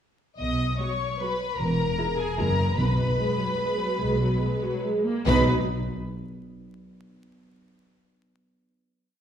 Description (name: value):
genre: classical, orchestral ballroom waltz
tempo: 137-164 BPM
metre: 3/4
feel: rubato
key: B major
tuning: A4 = 444 Hz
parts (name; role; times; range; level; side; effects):
- warm studio violin section; melody; 0.4-5.5 s; G#5 to D#6; -32 LUFS; left 2 dB; none
- warm studio violin section; second line; 0.4-5.5 s; G#4 to D#5; -30 LUFS; left 1 dB; none
- dark studio double bass section; bass; 0.4-5.5 s; E1 to B1; -30 LUFS; equal; none
- warm studio cello section; bass; 0.4-5.5 s; E2 to B2; -30 LUFS; right 1 dB; none
- warm studio viola section; accompaniment; 0.8-5.5 s; F#3 to F#4; -29 LUFS; equal; none
- timpani; percussion; 2.8-5.4 s; B2; -30 LUFS; equal; none
room: wet recital hall reverb, RT60 1.4 s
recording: heard from further back in the room, vinyl crackle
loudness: -23 LUFS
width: side -9 dB against mid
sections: 0.4-5.3 A section; 5.3-6.5 final chord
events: none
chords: 0.4 B; 1.6 E; 2.4 F#add9; 2.8 B5; 5.3 B